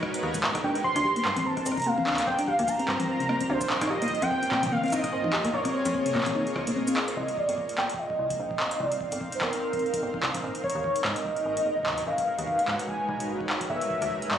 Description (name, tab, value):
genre	IDM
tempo	147 BPM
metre	4/4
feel	swing 56% on 16ths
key	C minor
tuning	A4 = 440 Hz
part	granular cloud pad	sustained chords	0.0-14.4 s	G3 to F5	-34 LUFS	equal	built-in reverb
part	booming analog drum machine	drums	0.0-14.4 s	cabasa, handclaps, hi-hat, rim click, toms	-31 LUFS	equal	overdrive
part	electronic kick drum	drums	0.0-14.2 s	none	-41 LUFS	equal	overdrive
part	metallic FM bass	bass	0.2-14.4 s	F1 to Bb2	-35 LUFS	equal	none
part	warm velvety synth lead	melody	0.6-14.4 s	Bb4 to C6	-28 LUFS	equal	chorus, tape echo
part	thumb-piano-like synth pluck	arpeggios	0.6-7.1 s	C3 to C5	-29 LUFS	left 2 dB	chorus, tape echo
room	moderate echo chamber reverb, RT60 1.6 s, digital ambience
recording	recorded on a phone in the room, studio reverb, compression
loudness	-25 LUFS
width	side -9 dB against mid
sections	0.0-7.2 A section; 7.2-14.4 B section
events	kick drops out 6.8-7.2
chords	0.0 Abm11; 0.6 Gm7; 3.7 Bbm11; 7.2 Cm11; 10.4 Abm11; 13.7 Gm11